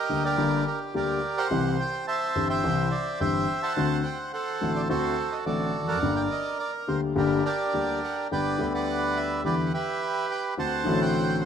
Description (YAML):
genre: tango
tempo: 106 BPM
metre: 4/4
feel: rubato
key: G harmonic minor, G major from 8.3 s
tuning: A4 = 440 Hz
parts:
  - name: bandoneon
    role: melody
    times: 0.0-11.5 s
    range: D4 to A5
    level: -27 LUFS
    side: right 3 dB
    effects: none
  - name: warm concert grand piano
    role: accompaniment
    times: 0.1-11.5 s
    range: G1 to G4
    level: -27 LUFS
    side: left 3 dB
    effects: none
room: moderate plate reverb, RT60 3.0 s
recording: minimal, uncompressed stereo recording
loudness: -24 LUFS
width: side -8 dB against mid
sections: 0.0-8.3 A section; 8.3-11.5 B section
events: none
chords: 0.0 Gm; 1.5 C; 3.8 D7; 6.0 Gm; 8.3 G; 9.4 Em7; 10.6 D7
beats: 0.38 0.94 | 1.51 2.07 2.63 3.20 | 3.76 4.33 4.89 5.46 | 6.02 6.59 7.16 7.74 | 8.31 8.88 9.45 10.01 | 10.58 11.14